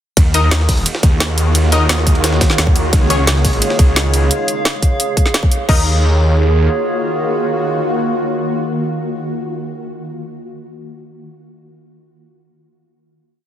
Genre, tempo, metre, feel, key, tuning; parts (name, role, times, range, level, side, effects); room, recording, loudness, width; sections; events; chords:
dark technical drum and bass; 174 BPM; 4/4; straight; Eb minor; A4 = 440 Hz
swarming drone; sustained chords; 0.8-9.2 s; Db3 to Gb4; -21 LUFS; equal; built-in reverb, sidechain pumping
snarling distorted saw bass; bass; 0.2-6.7 s; Db2 to Eb2; -14 LUFS; equal; distortion, overdrive
drum and bass drum kit; drums; 0.2-5.8 s; crash cymbal, hi-hat, snare drum; -18 LUFS; equal; overdrive
electronic kick drum; drums; 0.2-5.8 s; -13 LUFS; equal
jungle sampler-style drum kit; drums; 0.2-4.2 s; hi-hat, ride cymbal, snare drum; -24 LUFS; right 1 dB; high-pass filter on cymbals, high-pass filter on snare, high-pass filter on hats
warbly tape-like pad; texture; 0.9-9.2 s; Ab4 to F5; -22 LUFS; right 2 dB; chorus, built-in reverb, sidechain pumping
orchestra-hit-like synth stab; stabs; 0.3-3.2, 5.7-9.9 s; Db4 to Eb5; -22 LUFS; left 3 dB; built-in reverb, tape echo
light reverb, digital ambience; dense, heavily limited modern master; -12 LUFS; side -11 dB against mid
0.2-5.7 drop; 5.7-8.4 final chord
drop 0.2-5.7; band accent 5.3
0.2 Ebm; 2.9 Db; 5.7 Ebm